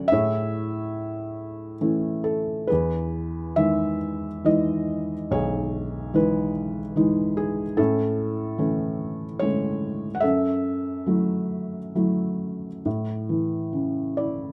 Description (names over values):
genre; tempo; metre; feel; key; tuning
classical, lyrical solo piano; 66-75 BPM; 3/4; rubato; E major; A4 = 438 Hz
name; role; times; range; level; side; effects
felt-muted upright piano; solo; 0.0-14.5 s; B1 to F#5; -25 LUFS; equal; none
room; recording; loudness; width
moderate small room reverb, RT60 0.6 s; none; -25 LUFS; mono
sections
0.0-2.7 A section; 2.7-12.9 B section; 12.9-14.5 A section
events
none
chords
0.1 Amaj7; 2.7 Emaj7; 7.8 Amaj7; 10.2 F#m7; 12.9 A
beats
| 0.12 0.94 1.80 | 2.69 3.56 4.44 | 5.30 6.13 6.95 | 7.78 8.60 9.41 | 10.23 11.07 11.97 | 12.86 13.74